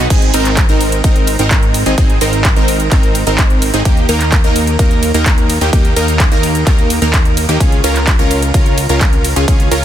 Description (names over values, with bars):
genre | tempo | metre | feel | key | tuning
EDM, festival progressive house | 128 BPM | 4/4 | straight | Ab major | A4 = 440 Hz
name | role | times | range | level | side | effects
supersaw stab | riff | 0.0-9.8 s | Bb3 to Bb4 | -15 LUFS | right 1 dB | sidechain pumping, ping-pong delay
fat analog bass | bass | 0.0-9.8 s | Ab1 to Eb2 | -17 LUFS | equal | sidechain pumping
big-room dance drum kit | drums | 0.1-9.8 s | crash cymbal, handclaps, hi-hat, ride cymbal, shaker | -18 LUFS | right 1 dB | studio reverb
electronic kick drum | drums | 0.1-9.6 s | none | -12 LUFS | equal | studio reverb
room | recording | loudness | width
digital ambience | dense, heavily limited modern master | -10 LUFS | side -11 dB against mid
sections
0.0-9.8 A section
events
none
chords
0.1 Ab; 3.9 Eb; 7.6 Db